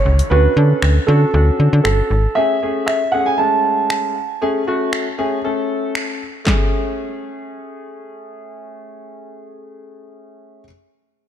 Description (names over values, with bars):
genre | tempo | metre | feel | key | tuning
dance-pop | 117 BPM | 4/4 | straight | A major | A4 = 436 Hz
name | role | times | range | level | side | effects
warm concert grand piano | melody | 0.0-5.9 s | A4 to A5 | -18 LUFS | right 3 dB | ping-pong delay
warm concert grand piano | accompaniment | 0.0-10.6 s | G#3 to A4 | -23 LUFS | left 2 dB | wide subtle chorus, sidechain pumping
downlifter | sound effects | 0.0-2.4 s | none | -35 LUFS | equal | none
slap-like FM bass | bass | 0.1-2.3 s | G1 to D3 | -13 LUFS | equal | sidechain pumping
house drum kit | drums | 0.2-6.6 s | finger snaps, handclaps, hi-hat, kick drum, snare drum | -22 LUFS | equal | none
room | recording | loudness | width
light reverb | none | -14 LUFS | side -10 dB against mid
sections
0.0-6.5 A section; 6.5-10.6 B section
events
none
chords
0.3 Dmaj7; 2.4 Amaj7